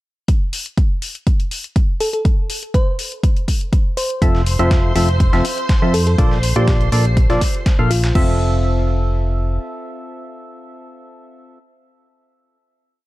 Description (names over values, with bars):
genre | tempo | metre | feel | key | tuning
piano house | 122 BPM | 4/4 | straight | F major | A4 = 437 Hz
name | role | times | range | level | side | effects
electronic kick drum | drums | 0.3-8.3 s | none | -15 LUFS | equal | overdrive
house drum kit | drums | 0.3-8.3 s | crash cymbal, hi-hat | -28 LUFS | left 3 dB | overdrive
bell-like FM electric piano | melody | 2.0-8.2 s | F4 to C5 | -25 LUFS | equal | chorus, tape echo
string machine, violins | sustained chords | 4.2-8.2 s | C5 to C6 | -27 LUFS | right 1 dB | ensemble chorus, sidechain pumping
percussive organ stab | riff | 4.2-11.6 s | Bb2 to F5 | -22 LUFS | equal | analog chorus, sidechain pumping, tape echo
solid FM bass | bass | 4.2-9.6 s | F1 to F2 | -17 LUFS | equal | sidechain pumping
dusty soul sampler-style drum kit | drums | 4.2-8.1 s | hi-hat, snare drum | -31 LUFS | equal | sidechain pumping on hats, high-pass filter on hats, high-pass filter on snare
room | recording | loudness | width
digital ambience | dark, warm production | -14 LUFS | side -18 dB against mid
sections
0.3-8.2 groove; 8.2-12.1 final chord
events
none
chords
0.3 N.C.; 4.2 Fmaj7; 6.2 Bbmaj7; 8.2 Fmaj7